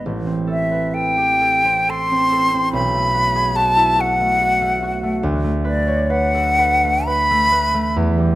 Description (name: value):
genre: classical, impressionist duo for flute and harp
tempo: 40-49 BPM (dotted quarters)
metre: 6/8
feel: rubato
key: D major from 5.2 s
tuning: A4 = 440 Hz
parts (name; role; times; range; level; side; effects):
- bright silver concert flute; melody; 0.0-8.0 s; D5 to C6; -16 LUFS; left 1 dB; none
- concert harp; accompaniment; 0.0-8.4 s; A1 to C#5; -20 LUFS; right 1 dB; none
room: moderate recital hall reverb, RT60 1.7 s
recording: close, detailed microphones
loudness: -15 LUFS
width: side -16 dB against mid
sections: 0.0-8.4 A section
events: none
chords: 0.1 Am7; 2.7 B5; 5.2 D6